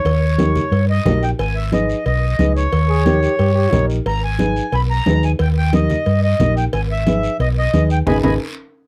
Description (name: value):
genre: latin, cumbia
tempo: 180 BPM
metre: 4/4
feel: straight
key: G# harmonic minor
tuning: A4 = 440 Hz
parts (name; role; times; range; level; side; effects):
- accordion; melody; 0.0-8.3 s; C#5 to B5; -24 LUFS; equal; none
- hollow-body short-scale fingered electric bass; bass; 0.0-8.4 s; G#1 to G2; -20 LUFS; equal; none
- congas; percussion; 0.1-8.3 s; none; -24 LUFS; equal; none
- cowbell and timbales; percussion; 0.1-8.3 s; none; -30 LUFS; equal; none
- guiro; percussion; 0.1-8.3 s; none; -39 LUFS; equal; none
- dark upright piano; accompaniment; 0.4-8.3 s; D#4 to B4; -24 LUFS; equal; none
- clear trombone; second line; 2.9-4.0 s; D#4 to G#4; -26 LUFS; equal; none
room: little or no reverb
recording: dry, close 1970s-style studio recording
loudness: -17 LUFS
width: mono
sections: 0.0-8.9 A section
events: drum fill 8.1-8.9; band accent 8.1-8.9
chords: 0.1 D#7; 1.4 G#m; 2.7 D#7; 4.1 G#m; 5.4 D#; 6.7 G#m